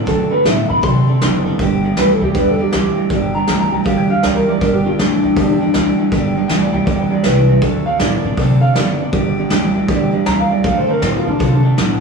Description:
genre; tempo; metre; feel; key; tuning
rockabilly; 159 BPM; 4/4; swing 63% on 8ths; G major; A4 = 440 Hz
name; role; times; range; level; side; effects
picked steel-string acoustic guitar; accompaniment; 0.0-12.0 s; G2 to A4; -23 LUFS; left 1 dB; none
electric guitar through a small old amp; riff; 0.0-12.0 s; G2 to B3; -19 LUFS; right 4 dB; none
electric guitar through a small old amp; melody; 0.1-12.0 s; D4 to C6; -18 LUFS; equal; none
upright bass; bass; 0.1-12.0 s; F#1 to C3; -19 LUFS; equal; none
soft brush drum kit; drums; 0.1-11.9 s; hi-hat, kick drum, snare drum; -20 LUFS; equal; none
room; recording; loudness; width
wet stone room reverb, RT60 1.1 s; band playing live in one room, studio reverb; -13 LUFS; side -4 dB against mid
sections
0.0-3.1 A section; 3.1-12.0 A section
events
clean electric guitar solo 0.0-12.0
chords
0.0 D7; 1.6 G; 7.6 D7; 9.1 G; 10.6 D7

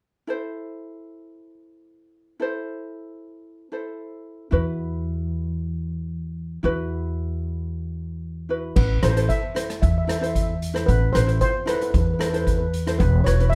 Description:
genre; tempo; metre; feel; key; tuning
calypso; 113 BPM; 4/4; straight; unclear; A4 = 440 Hz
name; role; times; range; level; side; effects
ukulele; accompaniment; 0.3-13.6 s; E4 to C5; -31 LUFS; equal; none
upright bass; bass; 4.5-13.5 s; E1 to E2; -25 LUFS; equal; none
steel pan; melody; 8.8-13.6 s; B4 to E5; -29 LUFS; equal; plate reverb
street-band drum kit; drums; 8.8-13.6 s; crash cymbal, hi-hat, kick drum, rim click; -28 LUFS; equal; none
room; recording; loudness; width
light reverb; dark, warm production; -24 LUFS; mono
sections
0.3-8.8 A section; 8.8-13.6 B section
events
none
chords
0.3 Am; 4.5 Esus2; 8.8 Amadd9; 13.0 Esus2

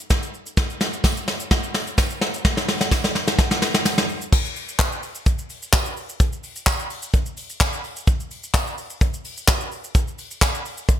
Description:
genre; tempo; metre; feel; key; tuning
pop; 128 BPM; 4/4; straight; none; none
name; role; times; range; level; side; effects
soft brush drum kit; drums; 0.1-11.0 s; crash cymbal, handclaps, hi-hat, kick drum, shaker, snare drum; -19 LUFS; equal; gated reverb
tambourine; percussion; 1.0-10.5 s; none; -36 LUFS; right 7 dB; none
room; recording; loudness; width
light reverb, small room ambience; bright 1980s-style digital production; -20 LUFS; side -10 dB against mid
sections
0.0-4.3 A section; 4.3-11.0 B section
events
build-up 0.0-4.3; drum fill 0.0-4.3; drop 4.3-11.0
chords
none

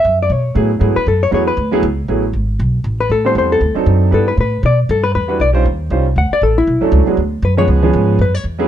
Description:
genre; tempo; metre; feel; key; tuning
jazz, small-group swing and bop; 236 BPM; 4/4; swing 59% on 8ths; F# minor; A4 = 440 Hz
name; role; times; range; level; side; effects
hollow-body jazz guitar; melody; 0.0-8.4 s; E4 to F#5; -15 LUFS; left 3 dB; none
upright bass; bass; 0.0-8.7 s; G#1 to B2; -15 LUFS; equal; none
warm upright piano; accompaniment; 0.5-8.7 s; E#3 to B#4; -16 LUFS; right 3 dB; none
room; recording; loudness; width
light reverb; dark, warm production; -12 LUFS; side -10 dB against mid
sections
0.0-2.1 A section; 2.1-8.7 A section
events
hollow-body jazz guitar solo 0.0-8.7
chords
0.0 F#m11; 3.1 Am9; 3.6 D7b9; 4.1 G6; 5.1 Em9; 5.6 D#13; 6.2 Dmaj7; 7.2 G#m7b5; 7.7 C#7

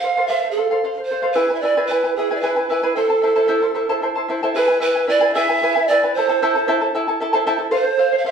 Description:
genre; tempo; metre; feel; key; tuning
andean folk, Andean ensemble; 76 BPM (dotted quarters); 6/8; straight; A minor; A4 = 441 Hz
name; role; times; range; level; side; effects
breathy pan flute; melody; 0.0-8.3 s; G#4 to F5; -18 LUFS; right 3 dB; none
charango; accompaniment; 0.0-8.3 s; E4 to A5; -20 LUFS; left 1 dB; none
room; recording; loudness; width
wet studio reverb, RT60 0.7 s; band playing live in one room, studio reverb; -16 LUFS; side -7 dB against mid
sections
0.0-4.6 A section; 4.6-8.3 B section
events
none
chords
0.0 F; 1.4 E; 3.0 Am; 4.6 E; 6.1 Am; 7.7 F

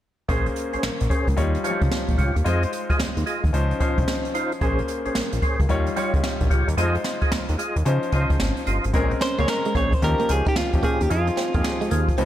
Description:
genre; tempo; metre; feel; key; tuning
R&B, new jack swing; 111 BPM; 4/4; swing 64% on 16ths; Bb dorian; A4 = 440 Hz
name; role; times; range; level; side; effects
clear baby grand piano; accompaniment; 0.3-12.2 s; F3 to Db5; -27 LUFS; left 3 dB; none
percussive tonewheel organ; stabs; 0.3-12.1 s; Db4 to Eb5; -29 LUFS; right 1 dB; overdrive, chorus vibrato, slow rotary speaker, tape echo
fat analog bass; bass; 0.3-12.2 s; G1 to Db3; -23 LUFS; equal; none
jazz brush drum kit; drums; 0.3-12.2 s; hi-hat, kick drum, snare drum; -24 LUFS; equal; gated reverb
direct-recorded clean electric guitar; riff; 9.1-12.2 s; Ab3 to Eb4; -29 LUFS; right 7 dB; lush chorus
direct-recorded clean electric guitar; melody; 9.2-12.1 s; F4 to Db5; -25 LUFS; equal; none
room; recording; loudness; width
light reverb, small room ambience; none; -20 LUFS; side -12 dB against mid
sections
0.3-8.9 A section; 8.9-12.2 B section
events
none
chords
0.3 Bbm9; 1.4 Eb9; 2.5 Fm7; 3.5 Dbmaj9; 4.6 Bbm9; 5.7 Eb9; 6.8 Fm7; 7.9 Dbmaj9; 8.9 Bbm9; 10.0 Eb9; 11.1 Fm7

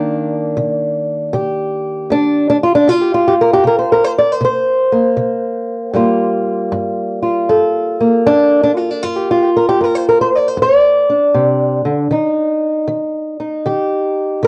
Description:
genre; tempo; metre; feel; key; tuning
acoustic country blues, solo or duo; 78 BPM; 4/4; swing 65% on 8ths; G minor; A4 = 435 Hz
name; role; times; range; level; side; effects
fingerpicked old ladder-braced acoustic guitar; solo; 0.0-14.5 s; G2 to D5; -15 LUFS; equal; cassette tape
room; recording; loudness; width
moderate studio reverb, RT60 0.6 s; home recording on cassette, nothing above 10.6 kHz; -15 LUFS; mono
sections
0.0-14.5 A section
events
none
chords
0.0 Cm9; 5.9 Gm9; 12.1 Ebmaj7

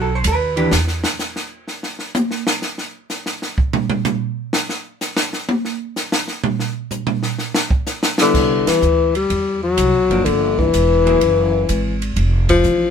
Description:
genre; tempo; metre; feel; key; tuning
jazz, small-group swing and bop; 126 BPM; 4/4; swing 69% on 8ths; unclear; A4 = 440 Hz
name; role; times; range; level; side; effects
vintage hollow-body jazz guitar; accompaniment; 0.0-0.7, 8.2-11.2 s; E3 to C5; -20 LUFS; right 2 dB; none
upright bass; bass; 0.0-1.0, 8.3-12.9 s; E1 to E2; -20 LUFS; right 1 dB; none
compact cocktail drum kit; drums; 0.2-12.8 s; crash cymbal, hi-hat, kick drum, ride cymbal, snare drum, toms; -20 LUFS; right 2 dB; none
mellow tenor saxophone; melody; 8.2-12.9 s; D3 to G3; -15 LUFS; left 5 dB; none
room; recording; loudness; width
light reverb; band playing live in one room; -16 LUFS; side -7 dB against mid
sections
0.0-8.3 A section; 8.3-12.9 B section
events
drum solo 0.7-8.3; band accent 8.6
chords
0.0 B7; 0.7 N.C.; 7.4 G6/D; 8.3 Cmaj7; 10.3 Gm7; 11.2 F#sus2; 12.2 F

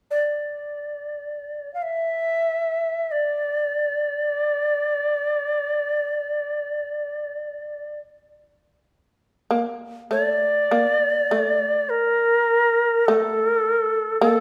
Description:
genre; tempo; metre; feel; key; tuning
japanese traditional; free time; none; none; unclear; A4 = 441 Hz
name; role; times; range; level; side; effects
bright reedy shakuhachi; melody; 0.1-14.4 s; A4 to F5; -23 LUFS; equal; none
shamisen; second line; 9.5-14.4 s; A3 to Bb3; -26 LUFS; equal; none
room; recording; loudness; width
moderate recital hall reverb, RT60 1.3 s; recorded in a church or concert hall; -23 LUFS; mono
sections
0.0-9.5 A section; 9.5-14.4 B section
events
none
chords
none

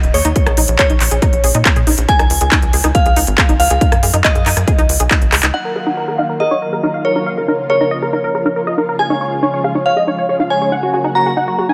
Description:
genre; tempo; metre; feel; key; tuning
uplifting trance; 139 BPM; 4/4; straight; Eb minor; A4 = 440 Hz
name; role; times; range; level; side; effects
glassy synth bell; second line; 0.0-11.7 s; Db5 to Bb5; -21 LUFS; equal; chorus, tremolo, dub echo
tight sequencer bass; bass; 0.0-5.5 s; Eb1 to Bb2; -19 LUFS; equal; sidechain pumping
techno drum kit; drums; 0.0-5.5 s; handclaps, hi-hat, rim click; -19 LUFS; equal; none
tight sequenced synth; arpeggios; 0.1-11.7 s; Eb4 to Ab4; -23 LUFS; equal; chorus, sidechain pumping, delay
electronic kick drum; drums; 0.4-5.2 s; none; -17 LUFS; equal; none
supersaw stab; melody; 5.5-11.7 s; Gb4 to Ab5; -21 LUFS; equal; phaser, sidechain pumping, low-pass filter, delay
analog string pad; sustained chords; 5.5-11.5 s; Db3 to Gb4; -25 LUFS; equal; ensemble chorus, sidechain pumping
room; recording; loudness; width
light reverb; none; -14 LUFS; mono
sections
0.0-5.5 A section; 5.5-11.7 B section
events
drum fill 5.3; filter sweep on supersaw synth 5.5-11.7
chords
0.4 Bbm; 2.1 Db; 3.8 Ebmadd9/Gb; 4.7 Dbsus2; 5.5 Ebmadd9; 7.3 Bbm; 9.0 Db; 10.7 Gb

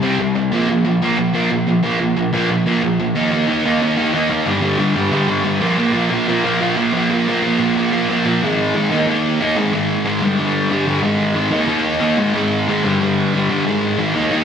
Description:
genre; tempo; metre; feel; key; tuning
punk; 183 BPM; 4/4; straight; unclear; A4 = 440 Hz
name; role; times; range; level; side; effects
sludgy distorted guitar; solo; 0.0-14.4 s; G2 to Eb4; -15 LUFS; equal; overdrive, slapback echo, tape echo
room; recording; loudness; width
wet lush hall reverb, RT60 2.0 s; big arena sound; -15 LUFS; side -7 dB against mid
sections
0.0-3.1 A section; 3.1-8.4 B section; 8.4-14.4 C section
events
none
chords
0.0 C5; 0.5 Bb5; 3.1 Eb5; 4.5 G5; 5.6 Bb5; 8.4 Ab5; 8.9 Eb5; 9.6 Ab5; 10.2 G5; 11.0 Ab5; 11.5 Eb5; 12.2 Ab5; 12.8 G5; 13.7 Ab5

